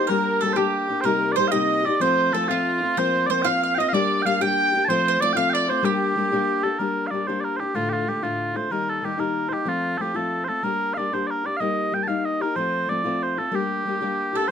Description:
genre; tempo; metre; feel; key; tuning
celtic folk, Celtic jig; 125 BPM (dotted quarters); 6/8; straight; G minor; A4 = 440 Hz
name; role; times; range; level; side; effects
mellow small bagpipes; melody; 0.0-14.5 s; F4 to A5; -23 LUFS; right 2 dB; plate reverb
bowl-back mandolin; second line; 0.0-6.5, 14.4-14.5 s; F4 to G5; -27 LUFS; right 10 dB; none
dark fiddle; second line; 0.0-6.5, 14.3-14.5 s; F4 to G5; -28 LUFS; left 2 dB; none
fingerpicked steel-string acoustic guitar; accompaniment; 0.0-14.5 s; D2 to G4; -25 LUFS; left 5 dB; none
room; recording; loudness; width
moderate studio reverb, RT60 0.6 s; close, detailed microphones; -20 LUFS; side -8 dB against mid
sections
0.0-6.8 A section; 6.8-14.5 B section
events
none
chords
0.1 Gm; 1.1 Cm7; 2.0 F; 3.0 Fsus4; 3.9 Gm; 4.9 F; 5.8 Gm; 7.8 Dm; 8.7 Eb; 9.7 F; 10.6 Gm; 11.6 Eb/G; 12.6 F; 13.5 Gm

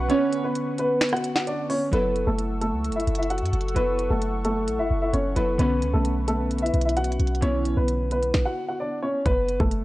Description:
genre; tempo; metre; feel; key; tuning
hip hop, trap; 131 BPM; 4/4; half-time; F# minor; A4 = 441 Hz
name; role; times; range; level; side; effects
dark grand piano; melody; 0.0-9.8 s; A3 to F#5; -25 LUFS; equal; none
glassy digital keys; accompaniment; 0.0-9.2 s; D3 to A4; -30 LUFS; right 2 dB; chorus
warm analog pad; sustained chords; 0.0-8.3 s; A4 to E6; -34 LUFS; left 2 dB; chorus
clean 808-style bass; bass; 0.0-9.8 s; F#1 to F#2; -25 LUFS; equal; none
trap drum kit; drums; 0.1-9.8 s; finger snaps, hi-hat, kick drum, rim click, snare drum; -28 LUFS; equal; vintage 12-bit sampler grit
room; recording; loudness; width
little or no reverb; none; -22 LUFS; side -17 dB against mid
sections
0.0-1.9 A section; 1.9-9.3 B section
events
break 0.1-1.9; stop 8.3-9.3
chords
0.0 Bmadd9; 1.9 F#m7; 5.6 Bmadd9; 9.3 F#m

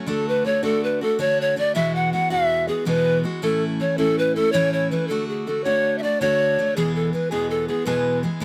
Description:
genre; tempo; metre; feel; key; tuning
celtic folk, Celtic slip jig; 108 BPM (dotted quarters); 9/8; straight; unclear; A4 = 438 Hz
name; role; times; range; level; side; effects
picked steel-string acoustic guitar; accompaniment; 0.0-8.4 s; E2 to G#4; -27 LUFS; equal; none
polished pan flute; melody; 0.1-8.4 s; G#4 to F#5; -23 LUFS; equal; none
room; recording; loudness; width
light reverb; close, detailed microphones; -22 LUFS; mono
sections
0.0-8.4 A section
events
none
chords
0.1 D; 1.8 Eadd9; 3.4 A; 5.1 D; 6.8 E

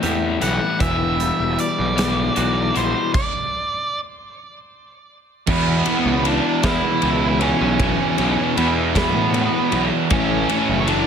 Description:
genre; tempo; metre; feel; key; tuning
quiet-loud alternative rock; 52 BPM (dotted quarters); 6/8; straight; E minor; A4 = 439 Hz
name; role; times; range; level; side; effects
clean electric guitar; arpeggios; 0.0-3.1 s; A2 to G4; -27 LUFS; right 5 dB; wide subtle chorus
overdriven semi-hollow guitar; riff; 0.0-11.1 s; E2 to A3; -23 LUFS; left 12 dB; harmonic tremolo
fuzz picked electric bass; bass; 0.0-11.0 s; E1 to A2; -23 LUFS; equal; overdrive
big rock drum kit; drums; 0.0-11.1 s; crash cymbal, hi-hat, kick drum, ride cymbal, snare drum; -25 LUFS; equal; none
octave-fuzz lead guitar; melody; 0.4-11.1 s; B3 to F#5; -23 LUFS; right 2 dB; distortion, plate reverb, digital delay
distorted electric guitar; riff; 5.5-11.1 s; E2 to A3; -22 LUFS; right 13 dB; distortion
room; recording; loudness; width
light reverb; none; -17 LUFS; side -7 dB against mid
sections
0.0-5.5 A section; 5.5-11.1 B section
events
stop 3.1-5.5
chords
0.0 Am7; 0.8 Emadd9; 3.1 N.C.; 5.5 E5; 10.1 A

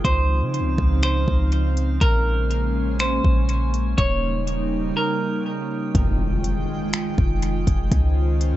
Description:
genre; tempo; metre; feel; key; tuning
hip hop, atmospheric cloud-rap; 122 BPM; 4/4; half-time; F minor; A4 = 438 Hz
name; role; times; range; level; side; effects
semi-hollow electric guitar; melody; 0.0-5.4 s; Bb4 to Db5; -26 LUFS; right 1 dB; low-pass filter, analog delay
airy breathy pad; sustained chords; 0.0-8.6 s; Db3 to G5; -26 LUFS; right 1 dB; chorus, sidechain pumping
clean 808-style bass; bass; 0.0-8.6 s; Eb1 to Db3; -21 LUFS; equal; none
organic electronic drum kit; drums; 0.0-8.5 s; finger snaps, hi-hat, kick drum; -22 LUFS; equal; none
drifting glass-harmonics texture; texture; 0.0-8.6 s; Db4 to Ab5; -37 LUFS; right 1 dB; chorus, built-in reverb
impact; sound effects; 5.9-7.9 s; none; -30 LUFS; equal; none
room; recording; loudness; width
digital ambience; echo-heavy mix, nothing above 8.0 kHz; -19 LUFS; side -14 dB against mid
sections
0.0-5.9 A section; 5.9-8.6 B section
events
impact 5.9-7.9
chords
0.0 Dbmaj9; 2.0 Bbm9; 4.0 Eb7; 5.9 Fm9; 7.9 Dbmaj9

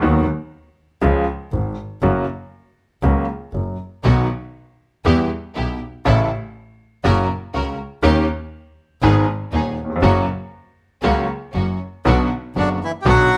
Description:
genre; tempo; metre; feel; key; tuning
tango; 120 BPM; 4/4; rubato; unclear; A4 = 441 Hz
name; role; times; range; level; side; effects
warm grand piano; accompaniment; 0.0-13.3 s; D#1 to G#4; -22 LUFS; equal; none
rich double bass; bass; 0.0-13.3 s; F#1 to E2; -23 LUFS; equal; none
clear symphonic string section; stabs; 4.0-13.3 s; A#3 to A#4; -29 LUFS; equal; none
bandoneon; melody; 12.6-13.4 s; D3 to G4; -19 LUFS; equal; none
room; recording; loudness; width
light reverb; close, detailed microphones; -20 LUFS; mono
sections
0.0-12.1 A section; 12.1-13.4 B section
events
none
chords
0.0 B/D#; 1.0 C#; 2.0 F#; 4.0 B; 5.1 Em; 6.1 A; 7.0 F#; 8.0 D#7; 9.0 G#m; 10.0 F#; 12.1 Bm

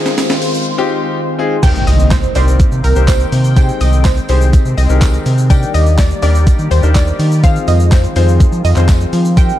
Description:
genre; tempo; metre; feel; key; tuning
dance-pop; 124 BPM; 4/4; straight; unclear; A4 = 438 Hz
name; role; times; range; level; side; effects
clear concert grand piano; accompaniment; 0.0-9.6 s; C4 to D5; -21 LUFS; left 5 dB; sidechain pumping
sweeping resonant pad; sustained chords; 0.0-9.6 s; Eb3 to G5; -21 LUFS; left 1 dB; chorus, sidechain pumping
riser and impact; sound effects; 0.0-3.6 s; none; -21 LUFS; equal; none
crisp 8-bit digital drum machine; drums; 0.1-9.6 s; crash cymbal, handclaps, hi-hat, kick drum, shaker, snare drum; -13 LUFS; equal; overdrive
tambourine; percussion; 0.2-9.5 s; none; -34 LUFS; right 9 dB; none
analog pluck; melody; 1.6-9.6 s; Bb4 to G5; -21 LUFS; right 1 dB; chorus, tape echo
round analog bass; bass; 1.9-9.5 s; C2 to F3; -12 LUFS; equal; sidechain pumping
room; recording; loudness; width
little or no reverb; dark, warm production; -9 LUFS; side -13 dB against mid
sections
0.0-1.6 A section; 1.6-9.6 B section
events
build-up 0.0-1.6; drum fill 0.0-0.7; riser 0.0-1.6; drop 1.6-9.6; impact 1.6-3.6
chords
0.0 Fm7; 1.6 Cm7; 3.6 Abmaj7/C; 5.5 Ebmaj7; 7.4 Fm7

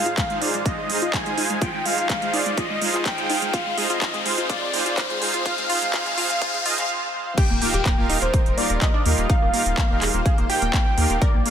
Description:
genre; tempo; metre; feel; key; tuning
progressive house; 125 BPM; 4/4; straight; Eb major; A4 = 440 Hz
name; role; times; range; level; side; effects
warm velvety synth lead; melody; 0.0-11.5 s; C5 to Ab5; -27 LUFS; equal; chorus, sidechain pumping, digital delay
lush unison pad; sustained chords; 0.0-11.5 s; G3 to F5; -32 LUFS; equal; chorus, phaser, sidechain pumping
tight sequenced synth; arpeggios; 0.0-11.5 s; Ab3 to Bb4; -29 LUFS; left 2 dB; chorus, sidechain pumping, dub echo
soft supersaw; stabs; 0.0-11.5 s; D4 to F5; -28 LUFS; right 3 dB; sidechain pumping, dub echo
riser and impact; sound effects; 0.0-9.3 s; none; -29 LUFS; left 3 dB; none
big-room dance drum kit; drums; 0.1-11.5 s; crash cymbal, handclaps, hi-hat; -27 LUFS; right 2 dB; sidechain pumping on hats, high-pass filter on hats, small room ambience, high-pass filter on snare, sidechain pumping on cymbals, high-pass filter on cymbals
electronic kick drum; drums; 0.2-11.3 s; none; -22 LUFS; equal; overdrive, small room ambience
soft round pluck; second line; 7.4-11.5 s; C5 to G5; -33 LUFS; right 1 dB; none
round analog bass; bass; 7.5-11.4 s; Eb1 to Eb2; -25 LUFS; equal; sidechain pumping
room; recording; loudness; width
moderate lush hall reverb, RT60 2.0 s; dense, heavily limited modern master, high-pass filter; -19 LUFS; side -9 dB against mid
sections
0.0-7.4 A section; 7.4-11.5 B section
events
build-up 0.0-7.4; riser 0.0-6.9; filter sweep on synth arpeggio sound 0.0-7.4; filter sweep 0.0-7.4; break 6.9-7.4; drop 7.4-11.5; impact 7.4-9.3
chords
0.0 Ab6; 7.4 Ebadd9

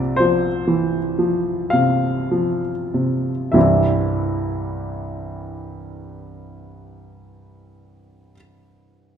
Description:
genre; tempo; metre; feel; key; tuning
classical, romantic nocturne for solo piano; 31-43 BPM; 3/4; rubato; C major; A4 = 440 Hz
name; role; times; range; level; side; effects
clear baby grand piano; solo; 0.0-9.2 s; C2 to F5; -18 LUFS; equal; none
room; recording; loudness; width
wet recital hall reverb, RT60 1.5 s; minimal, uncompressed stereo recording; -17 LUFS; side -8 dB against mid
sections
0.0-3.5 A section; 3.5-8.5 B section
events
slowing down 0.0-3.5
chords
0.0 F5/C; 3.5 C

